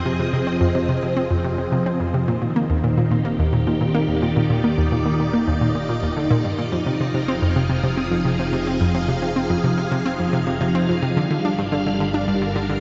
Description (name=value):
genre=ambient, sequencer-driven space music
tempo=108 BPM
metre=4/4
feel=straight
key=F dorian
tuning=A4 = 440 Hz
part: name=phased string machine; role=sustained chords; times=0.0-12.8 s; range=Eb3 to F5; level=-25 LUFS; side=equal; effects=ensemble chorus, phaser, shimmer reverb
part: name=analog pluck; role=riff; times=0.0-12.8 s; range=Eb2 to D4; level=-23 LUFS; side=equal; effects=chorus, tape echo
part: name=fat analog bass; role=bass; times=0.0-12.8 s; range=Eb1 to G1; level=-37 LUFS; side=equal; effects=none
part: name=pulsing gated texture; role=texture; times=0.0-12.8 s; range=F5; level=-42 LUFS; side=equal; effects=none
room=wet cathedral reverb, RT60 4.8 s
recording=in a vast, echoing space, cassette tape, nothing above 7.7 kHz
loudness=-21 LUFS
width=mono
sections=0.0-12.8 A section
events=fade-in on analog synth bass 0.0-12.8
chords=0.0 Fm7; 2.3 Ebmaj7; 6.7 Fm7; 11.2 Gm7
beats=| 0.06 0.61 1.17 1.72 | 2.28 2.83 3.39 3.94 | 4.50 5.05 5.61 6.17 | 6.72 7.28 7.83 8.39 | 8.94 9.50 10.05 10.61 | 11.17 11.72 12.28